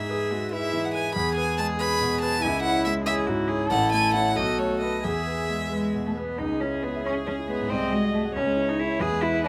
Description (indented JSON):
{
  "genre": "quick classical-period movement for piano quartet",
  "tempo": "93 BPM (dotted quarters)",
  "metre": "6/8",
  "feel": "straight",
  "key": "E major, C# minor from 6.4 s",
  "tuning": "A4 = 439 Hz",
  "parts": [
    { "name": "warm violin", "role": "melody", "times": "0.0-9.5 s", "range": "G#4 to B5", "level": "-31 LUFS", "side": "equal", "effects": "none" },
    { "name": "dark viola", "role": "accompaniment", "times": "0.0-9.5 s", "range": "E4 to D#5", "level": "-34 LUFS", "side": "equal", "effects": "none" },
    { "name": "warm concert grand piano", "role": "accompaniment", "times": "0.0-9.5 s", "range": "A1 to C#6", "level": "-31 LUFS", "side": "equal", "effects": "none" },
    { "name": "warm cello", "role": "second line", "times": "0.1-9.5 s", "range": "G#3 to A4", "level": "-30 LUFS", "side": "equal", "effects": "none" }
  ],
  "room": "light reverb",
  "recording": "close, detailed microphones",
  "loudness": "-25 LUFS",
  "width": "mono",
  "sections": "0.0-6.4 A section; 6.4-9.5 B section",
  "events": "none",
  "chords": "0.0 E/G#; 1.2 E; 2.4 C#m; 3.7 A6; 4.4 B5; 5.0 E; 6.4 C#m; 7.7 G#7/B#; 8.4 C#m"
}